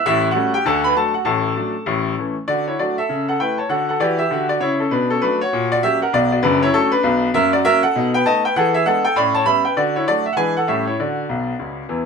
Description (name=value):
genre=jazz, stride piano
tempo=198 BPM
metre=4/4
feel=swing 62% on 8ths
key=D major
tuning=A4 = 440 Hz
part: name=bright baby grand piano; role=solo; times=0.0-12.1 s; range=F#1 to B5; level=-16 LUFS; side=equal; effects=none
room=moderate studio reverb, RT60 0.7 s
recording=minimal, uncompressed stereo recording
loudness=-16 LUFS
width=side -5 dB against mid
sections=0.0-2.5 A section; 2.5-12.1 B section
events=grand piano fill 11.3-12.1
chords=0.0 A7; 0.7 D; 1.3 D/A; 1.9 A; 2.5 D; 3.1 A/C#; 3.7 D; 4.9 Bm7; 5.5 F#/A#; 6.1 Bm7; 7.3 F#; 7.9 B7; 8.6 E7; 9.2 A9; 9.8 D; 10.4 E7; 10.7 A7; 11.0 D